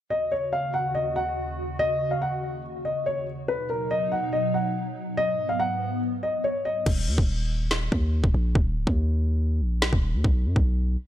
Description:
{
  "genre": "hip hop, drill",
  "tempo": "142 BPM",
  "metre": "4/4",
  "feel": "half-time",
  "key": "Eb minor",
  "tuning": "A4 = 440 Hz",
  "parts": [
    { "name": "dark concert grand piano", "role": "melody", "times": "0.1-6.9 s", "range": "Bb4 to Gb5", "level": "-26 LUFS", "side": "left 1 dB", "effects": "low-pass filter" },
    { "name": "hollow soft pad", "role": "sustained chords", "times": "0.1-6.8 s", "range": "Eb2 to Gb4", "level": "-31 LUFS", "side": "equal", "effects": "ensemble chorus" },
    { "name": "distorted 808-style bass", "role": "bass", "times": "6.9-11.0 s", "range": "Db1 to F#2", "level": "-24 LUFS", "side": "equal", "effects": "distortion" },
    { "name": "drill drum kit", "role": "drums", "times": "6.9-10.7 s", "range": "crash cymbal, kick drum, snare drum", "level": "-24 LUFS", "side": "equal", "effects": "none" }
  ],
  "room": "digital ambience",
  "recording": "none",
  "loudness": "-23 LUFS",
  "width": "side -12 dB against mid",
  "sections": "0.1-6.9 A section; 6.9-11.1 B section",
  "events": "hi-hats muted 6.9-11.1",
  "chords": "0.1 Ebm7; 3.5 B; 5.2 Abm7; 6.9 Eb5; 10.2 B5",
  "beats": "| 0.10 0.53 0.95 1.37 | 1.79 2.22 2.64 3.06 | 3.48 3.91 4.33 4.75 | 5.17 5.60 6.02 6.44 | 6.86 7.29 7.71 8.13 | 8.55 8.98 9.40 9.82 | 10.24 10.67"
}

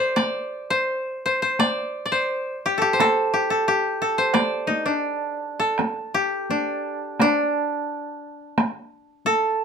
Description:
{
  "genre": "japanese traditional, Japanese chamber music",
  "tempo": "81-90 BPM",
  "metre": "2/4",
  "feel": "rubato",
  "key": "unclear",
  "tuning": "A4 = 440 Hz",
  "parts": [
    { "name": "koto", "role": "melody", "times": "0.0-9.6 s", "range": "D4 to D5", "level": "-21 LUFS", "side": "equal", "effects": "none" },
    { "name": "taiko ensemble", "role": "percussion", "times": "0.2-9.4 s", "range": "none", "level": "-23 LUFS", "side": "right 1 dB", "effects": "none" }
  ],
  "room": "moderate studio reverb, RT60 0.5 s",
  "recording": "minimal, uncompressed stereo recording",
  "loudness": "-21 LUFS",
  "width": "side -6 dB against mid",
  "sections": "0.0-5.8 A section; 5.8-9.6 B section",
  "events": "none",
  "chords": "none",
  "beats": "| 0.16 0.88 | 1.59 2.29 | 2.98 3.66 | 4.34 5.04 | 5.78 6.50 | 7.20 7.89 | 8.57 9.25"
}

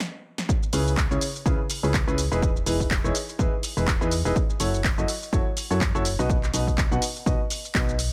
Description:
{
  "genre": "piano house",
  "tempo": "124 BPM",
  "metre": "4/4",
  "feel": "swing 57% on 16ths",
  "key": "E major",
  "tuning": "A4 = 440 Hz",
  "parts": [
    { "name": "punchy analog drum machine", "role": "drums", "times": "0.0-8.1 s", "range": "handclaps, hi-hat, shaker, snare drum", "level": "-32 LUFS", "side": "equal", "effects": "none" },
    { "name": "electronic kick drum", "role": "drums", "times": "0.5-7.9 s", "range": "none", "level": "-28 LUFS", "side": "equal", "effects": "none" },
    { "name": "clear grand piano", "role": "riff", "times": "0.7-7.9 s", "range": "B2 to F#5", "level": "-31 LUFS", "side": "equal", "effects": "vintage 12-bit sampler grit, sidechain pumping, tape echo" },
    { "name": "solid FM bass", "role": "bass", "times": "0.7-8.1 s", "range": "E1 to F#2", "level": "-29 LUFS", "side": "equal", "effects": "tube saturation, sidechain pumping" }
  ],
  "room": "digital ambience",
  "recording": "none",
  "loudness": "-24 LUFS",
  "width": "mono",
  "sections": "0.5-8.1 A section",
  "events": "drum fill 0.0-0.5; stop 0.0-0.5; drop 0.5-8.1",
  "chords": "0.5 C#m7; 2.2 Emaj7; 4.4 F#m7; 6.1 B",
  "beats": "0.00 | 0.49 0.97 1.46 1.94 | 2.42 2.91 3.39 3.88 | 4.36 4.84 5.33 5.81 | 6.29 6.78 7.26 7.75"
}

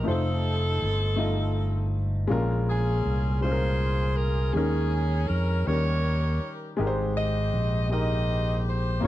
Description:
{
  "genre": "slow gospel",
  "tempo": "54 BPM (dotted quarters)",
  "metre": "6/8",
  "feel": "straight",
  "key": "Ab major",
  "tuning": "A4 = 440 Hz",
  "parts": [
    { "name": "edgy saxophone section", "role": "melody", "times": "0.0-9.1 s", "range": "C4 to Eb5", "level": "-30 LUFS", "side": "equal", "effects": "none" },
    { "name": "warm baby grand piano", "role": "accompaniment", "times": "0.0-9.1 s", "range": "G2 to Eb5", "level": "-30 LUFS", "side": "left 2 dB", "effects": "none" },
    { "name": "fingered electric bass", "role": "bass", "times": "0.0-9.1 s", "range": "F1 to F2", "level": "-25 LUFS", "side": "equal", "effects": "none" }
  ],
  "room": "small room ambience",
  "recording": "dry, close 1970s-style studio recording",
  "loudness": "-23 LUFS",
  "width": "side -14 dB against mid",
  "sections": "0.0-9.1 A section",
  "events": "none",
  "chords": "0.1 F7; 2.3 Bbm7; 4.6 Eb7sus4; 5.7 Eb7; 6.8 Abmaj7",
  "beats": "| 0.07 1.19 | 2.31 3.43 | 4.55 5.67 | 6.79 7.92 | 9.04"
}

